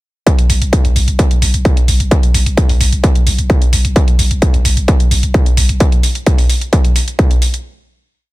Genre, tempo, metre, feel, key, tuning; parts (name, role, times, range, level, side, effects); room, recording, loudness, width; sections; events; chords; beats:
driving peak-time techno; 130 BPM; 4/4; straight; A4 = 439 Hz
electronic hi-hat; drums; 0.3-7.6 s; -20 LUFS; right 1 dB; sidechain pumping on hats
electronic kick drum; drums; 0.3-7.3 s; -11 LUFS; equal; distortion
growling 808-style bass; bass; 0.5-5.8 s; B1; -16 LUFS; equal; sidechain pumping, low-pass filter
little or no reverb; -10 LUFS; side -18 dB against mid
0.3-7.7 groove
| 0.27 0.73 1.19 1.65 | 2.11 2.57 3.04 3.50 | 3.96 4.42 4.88 5.34 | 5.80 6.27 6.73 7.19